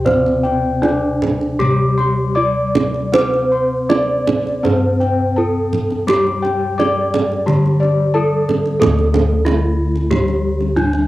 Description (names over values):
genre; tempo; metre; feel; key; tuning
Javanese gamelan; 78-92 BPM; 4/4; straight; D slendro; A4 = 439 Hz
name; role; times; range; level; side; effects
gamelan-type bronze metallophone; melody; 0.0-11.1 s; C4-25c to D5; -19 LUFS; equal; cassette tape
gamelan-type bronze metallophone; accompaniment; 0.0-11.1 s; C3-25c to C4-25c; -24 LUFS; left 3 dB; cassette tape
gamelan-type bossed gongs; arpeggios; 0.0-8.5 s; D5 to D6; -23 LUFS; left 3 dB; cassette tape
gamelan-type bossed gongs; bass; 0.0-11.1 s; D2 to C5-25c; -18 LUFS; equal; none
kendang; percussion; 0.1-11.0 s; none; -20 LUFS; right 4 dB; none
room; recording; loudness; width
moderate booth ambience, RT60 0.2 s; home recording on cassette; -14 LUFS; side -16 dB against mid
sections
0.0-8.8 A section; 8.8-11.1 B section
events
none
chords
none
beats
| 0.06 0.83 1.59 2.37 | 3.13 3.90 4.64 5.37 | 6.08 6.78 7.46 8.13 | 8.79 9.44 10.10 10.75